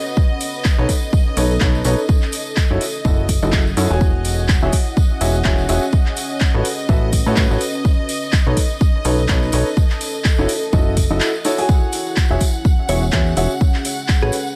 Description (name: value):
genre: piano house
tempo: 125 BPM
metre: 4/4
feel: swing 56% on 16ths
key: E major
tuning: A4 = 440 Hz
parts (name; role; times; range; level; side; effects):
- clear studio violin section; sustained chords; 0.0-14.6 s; D#5 to F#5; -32 LUFS; equal; sidechain pumping
- deep dark ambient pad; texture; 0.0-14.6 s; C#4 to F#5; -31 LUFS; equal; chorus, built-in reverb, sidechain pumping
- tambourine; percussion; 0.1-14.5 s; none; -34 LUFS; equal; none
- electronic kick drum; drums; 0.2-14.2 s; none; -18 LUFS; equal; overdrive
- house drum kit; drums; 0.4-14.4 s; handclaps, hi-hat; -28 LUFS; equal; none
- clear upright piano; riff; 0.8-14.3 s; D#4 to G#5; -25 LUFS; equal; sidechain pumping, delay
- plucky analog bass; bass; 0.8-14.3 s; E1 to A2; -21 LUFS; equal; sidechain pumping
- glassy wavetable pluck; melody; 12.9-14.3 s; G#4 to C#5; -30 LUFS; equal; chorus, delay
room: digital ambience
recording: none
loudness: -17 LUFS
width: mono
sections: 0.0-14.6 A section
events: kick drops out 11.2-11.7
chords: 0.0 B9; 2.1 F#m7; 4.0 E69; 5.9 A69; 7.6 B9; 9.8 F#m7; 11.7 E69; 13.6 A69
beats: | 0.17 0.65 1.13 1.61 | 2.09 2.57 3.05 3.53 | 4.01 4.49 4.97 5.45 | 5.93 6.41 6.89 7.37 | 7.85 8.33 8.81 9.29 | 9.77 10.25 10.73 11.21 | 11.69 12.17 12.65 13.13 | 13.61 14.09